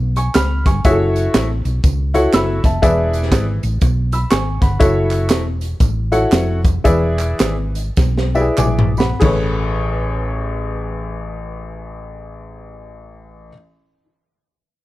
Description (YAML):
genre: uptempo gospel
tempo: 91-121 BPM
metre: 4/4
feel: swing 62% on 8ths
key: A major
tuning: A4 = 438 Hz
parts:
  - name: hollow-body short-scale fingered electric bass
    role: bass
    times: 0.0-13.5 s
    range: E1 to C#2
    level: -20 LUFS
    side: equal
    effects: none
  - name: warm upright piano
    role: accompaniment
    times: 0.2-13.5 s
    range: A1 to E#6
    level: -19 LUFS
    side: left 1 dB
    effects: none
  - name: crisp fusion drum kit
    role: drums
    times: 0.2-9.4 s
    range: crash cymbal, hi-hat, kick drum, snare drum, toms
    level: -17 LUFS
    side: equal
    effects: none
  - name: tambourine and handclaps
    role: percussion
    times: 0.2-9.6 s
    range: none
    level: -31 LUFS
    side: right 6 dB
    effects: none
room: small room reverb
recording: none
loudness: -14 LUFS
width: side -17 dB against mid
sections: 0.0-4.8 A section; 4.8-9.2 B section; 9.2-14.5 C section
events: slowing down 4.8-9.2; drum fill 8.0-9.2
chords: 0.0 C#7; 0.8 F#m7; 2.8 E7; 4.8 F#m7; 6.9 E7; 9.2 Amaj9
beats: 0.35 | 0.85 1.34 1.84 2.33 | 2.83 3.32 3.82 4.31 | 4.81 5.30 5.81 6.32 | 6.85 7.40 7.98 8.58 | 9.22 9.88 10.54 11.20 | 11.86 12.52 13.18